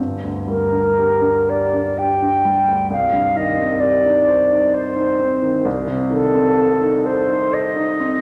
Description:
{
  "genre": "classical, romantic duo for flute and grand piano",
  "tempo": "57-66 BPM",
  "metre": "3/4",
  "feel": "rubato",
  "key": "G minor",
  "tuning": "A4 = 439 Hz",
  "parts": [
    { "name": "warm concert grand piano", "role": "accompaniment", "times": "0.0-8.2 s", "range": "G1 to C5", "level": "-22 LUFS", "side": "equal", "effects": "none" },
    { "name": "mellow concert flute", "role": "melody", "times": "0.5-8.2 s", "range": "A4 to G5", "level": "-19 LUFS", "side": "equal", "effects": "none" }
  ],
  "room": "wet scoring stage reverb, RT60 1.8 s",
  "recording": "none",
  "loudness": "-17 LUFS",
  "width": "mono",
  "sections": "0.0-8.2 A section",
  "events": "none",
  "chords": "0.0 Gm; 2.9 Cm; 5.7 Adim/C",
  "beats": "0.96 1.98 | 2.90 3.82 4.74 | 5.65 6.59 7.54"
}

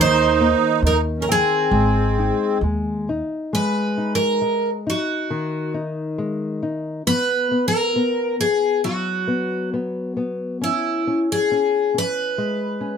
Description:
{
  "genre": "fado-style ballad",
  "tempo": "68 BPM",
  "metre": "2/4",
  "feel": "rubato",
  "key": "Ab major, G# minor from 3.5 s",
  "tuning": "A4 = 441 Hz",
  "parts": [
    { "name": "picked twelve-string acoustic guitar", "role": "melody", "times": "0.0-13.0 s", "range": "E4 to C5", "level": "-20 LUFS", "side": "equal", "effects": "none" },
    { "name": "musette accordion", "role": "second line", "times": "0.0-2.6 s", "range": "C4 to Eb4", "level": "-22 LUFS", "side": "right 7 dB", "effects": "none" },
    { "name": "nylon-string guitar", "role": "accompaniment", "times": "0.0-13.0 s", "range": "Eb3 to G5", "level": "-24 LUFS", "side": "left 2 dB", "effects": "none" },
    { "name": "upright bass", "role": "bass", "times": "0.0-3.2 s", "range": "Ab1 to Eb2", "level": "-22 LUFS", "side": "right 1 dB", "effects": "none" }
  ],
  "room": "little or no reverb",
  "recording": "close, detailed microphones",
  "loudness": "-18 LUFS",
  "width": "side -7 dB against mid",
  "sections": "0.0-3.5 A section; 3.5-13.0 B section",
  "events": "none",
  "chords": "0.0 Eb; 1.7 Ab; 3.5 G#5; 7.1 B5; 10.6 C#5",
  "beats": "0.84 | 1.72 2.62 | 3.53 4.42 | 5.31 6.18 | 7.05 7.93 | 8.82 9.72 | 10.62 11.51 | 12.38"
}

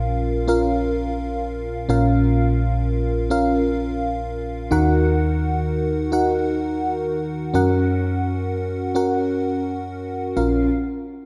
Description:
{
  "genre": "pop",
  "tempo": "85 BPM",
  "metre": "4/4",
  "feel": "straight",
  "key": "Bb minor",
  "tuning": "A4 = 439 Hz",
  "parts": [
    { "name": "FM electric piano with soft pad layer", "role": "accompaniment", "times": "0.0-10.7 s", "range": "Bb1 to Gb5", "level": "-21 LUFS", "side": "equal", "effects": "chorus, phaser" }
  ],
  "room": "moderate lush hall reverb, RT60 2.5 s",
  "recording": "none",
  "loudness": "-21 LUFS",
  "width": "mono",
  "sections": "0.0-10.4 A section",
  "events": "none",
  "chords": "0.0 Bbm; 4.7 Ebm; 7.5 Gb; 10.4 Bbm",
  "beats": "0.48 1.19 | 1.90 2.60 3.31 4.01 | 4.72 5.42 6.13 6.84 | 7.54 8.25 8.95 9.66 | 10.37"
}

